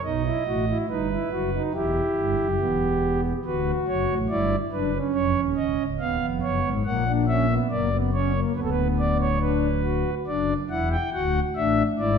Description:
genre	classical, baroque-style 3-part fugue for pipe organ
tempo	70 BPM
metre	4/4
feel	straight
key	unclear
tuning	A4 = 440 Hz
part	pipe organ, principal	solo	0.0-12.2 s	C#1 to G5	-22 LUFS	equal	none
room	wet recital hall reverb, RT60 1.5 s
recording	none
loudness	-22 LUFS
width	side -6 dB against mid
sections	0.0-10.3 A section; 10.3-12.2 B section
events	none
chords	0.0 B; 1.7 Em; 3.5 Bm/D; 5.1 C#7; 6.9 F#/A#; 8.6 Bm/D; 10.3 D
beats	| 0.04 0.89 1.75 2.60 | 3.45 4.30 5.15 6.00 | 6.85 7.70 8.56 9.41 | 10.27 11.13 11.99

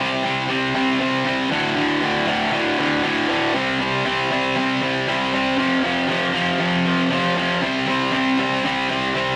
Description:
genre	rock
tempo	118 BPM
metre	4/4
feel	straight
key	unclear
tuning	A4 = 442 Hz
part	distorted electric guitar	solo	0.0-9.4 s	D2 to C4	-20 LUFS	equal	overdrive
room	wet studio reverb, RT60 0.5 s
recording	rough rehearsal-room recording, warm saturation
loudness	-20 LUFS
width	mono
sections	0.0-9.4 A section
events	none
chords	0.0 C5; 1.5 D5; 3.5 C5; 5.6 F5; 7.6 C5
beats	0.49 1.00 | 1.51 2.02 2.53 3.04 | 3.55 4.06 4.57 5.08 | 5.58 6.09 6.60 7.11 | 7.62 8.13 8.64 9.15

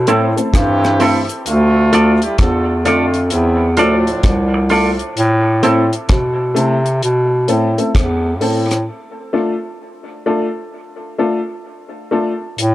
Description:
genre	dub reggae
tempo	65 BPM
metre	4/4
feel	swing 64% on 16ths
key	unclear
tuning	A4 = 445 Hz
part	warm horn section	second line	0.0-4.7 s	A2 to A4	-21 LUFS	right 1 dB	dub echo
part	warm bass clarinet	bass	0.0-12.7 s	C2 to C3	-15 LUFS	equal	none
part	semi-hollow electric guitar	accompaniment	0.1-5.8 s	C4 to D5	-19 LUFS	right 2 dB	dub echo
part	warm upright piano	stabs	0.1-12.3 s	A3 to A4	-20 LUFS	left 2 dB	dub echo
part	deep reggae drum kit	drums	0.1-12.7 s	hi-hat, kick drum, rim click	-18 LUFS	equal	none
part	cabasa	percussion	0.1-1.7 s	none	-36 LUFS	right 4 dB	dub echo
room	light reverb, small room reverb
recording	dark, warm production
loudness	-13 LUFS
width	side -15 dB against mid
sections	0.0-12.6 A section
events	part muted 1.5-12.6; break 5.2-12.6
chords	0.0 Am; 1.5 Dm; 5.2 Am; 8.9 Dm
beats	0.53 | 1.46 2.38 3.31 4.24 | 5.17 6.09 7.02 7.95 | 8.88 9.80 10.73 11.66 | 12.58

